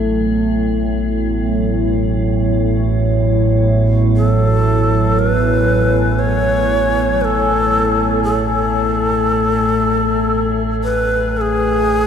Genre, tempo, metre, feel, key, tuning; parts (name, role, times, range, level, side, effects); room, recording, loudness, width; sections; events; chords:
dark ambient drone; free time; A4 = 442 Hz
dark analog pad; sustained chords; 0.0-12.1 s; F#3 to G#5; -20 LUFS; equal; chorus, phaser
deep rumbling drone; drone; 0.0-12.1 s; A1 to A2; -18 LUFS; right 2 dB; built-in reverb
metallic inharmonic drone; texture; 0.0-12.1 s; A3; -22 LUFS; left 2 dB; chorus, built-in reverb
bright long shakuhachi; melody; 4.2-12.1 s; G#4 to C#5; -16 LUFS; left 1 dB; tape echo
wet huge ambient reverb, RT60 8.2 s; cassette tape; -13 LUFS; side -8 dB against mid
0.0-12.1 A section
0.0 F#madd9